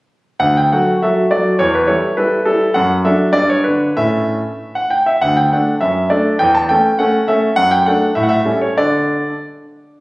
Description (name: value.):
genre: classical-period piano sonatina.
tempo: 94-104 BPM.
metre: 2/4.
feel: rubato.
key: D major.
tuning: A4 = 440 Hz.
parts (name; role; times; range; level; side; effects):
clear concert grand piano; solo; 0.4-9.3 s; D2 to A5; -12 LUFS; equal; none.
room: moderate recital hall reverb, RT60 1.6 s.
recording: recorded on a phone in the room, studio reverb, compression.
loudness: -12 LUFS.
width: side -21 dB against mid.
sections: 0.4-10.0 A section.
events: none.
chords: 0.4 D; 1.6 A5/E; 2.8 D/F#; 3.3 G; 4.0 A; 5.2 D; 5.8 D/F#; 6.4 A/E; 7.6 D/F#; 8.1 A7; 8.8 D5.